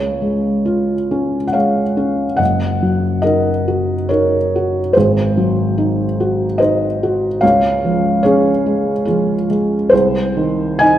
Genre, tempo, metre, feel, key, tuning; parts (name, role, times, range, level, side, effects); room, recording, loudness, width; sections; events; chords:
classical, romantic nocturne for solo piano; 72 BPM; 3/4; uneven beats, rubato; Db major; A4 = 440 Hz
felt-muted upright piano; solo; 0.0-11.0 s; Gb1 to Ab5; -13 LUFS; equal
wet recital hall reverb, RT60 1.7 s; dark, warm production; -13 LUFS; side -12 dB against mid
0.0-11.0 A section
0.0 Db; 2.4 Ebm/Gb; 5.0 Ab7; 7.4 Db; 9.9 Ab/C